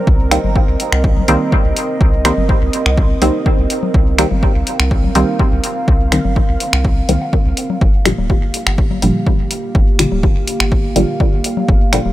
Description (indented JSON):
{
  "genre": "dub techno",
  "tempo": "124 BPM",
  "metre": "4/4",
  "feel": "straight",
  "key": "C minor",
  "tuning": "A4 = 440 Hz",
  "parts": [
    { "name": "dark analog pad", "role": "sustained chords", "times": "0.0-12.1 s", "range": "Bb3 to F5", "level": "-22 LUFS", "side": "right 2 dB", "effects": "chorus, sidechain pumping" },
    { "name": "filtered dub chord stab", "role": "stabs", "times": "0.0-12.0 s", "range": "Bb2 to C4", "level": "-19 LUFS", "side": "equal", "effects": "chorus, phaser, sidechain pumping, dub echo" },
    { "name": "soft dub sub bass", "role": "bass", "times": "0.1-12.1 s", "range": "D1 to C2", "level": "-18 LUFS", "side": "equal", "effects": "sidechain pumping" },
    { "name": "electronic kick drum", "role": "drums", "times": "0.1-11.8 s", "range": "none", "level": "-14 LUFS", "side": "equal", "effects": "none" },
    { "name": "punchy analog drum machine", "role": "drums", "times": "0.3-12.0 s", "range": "finger snaps, hi-hat", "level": "-19 LUFS", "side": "equal", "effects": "none" },
    { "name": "congas and woodblock", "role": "percussion", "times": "0.4-12.1 s", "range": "none", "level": "-25 LUFS", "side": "left 6 dB", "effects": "sidechain pumping on perc, dub echo" }
  ],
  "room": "little or no reverb",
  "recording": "none",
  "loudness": "-12 LUFS",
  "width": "side -15 dB against mid",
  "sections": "0.0-12.1 A section",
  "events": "filter sweep on synth stab 0.0-12.1",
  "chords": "0.0 Cm7; 7.8 Gm7",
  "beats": "| 0.07 0.56 1.04 1.52 | 2.01 2.49 2.98 3.46 | 3.94 4.43 4.91 5.39 | 5.88 6.36 6.85 7.33 | 7.81 8.30 8.78 9.27 | 9.75 10.23 10.72 11.20 | 11.69"
}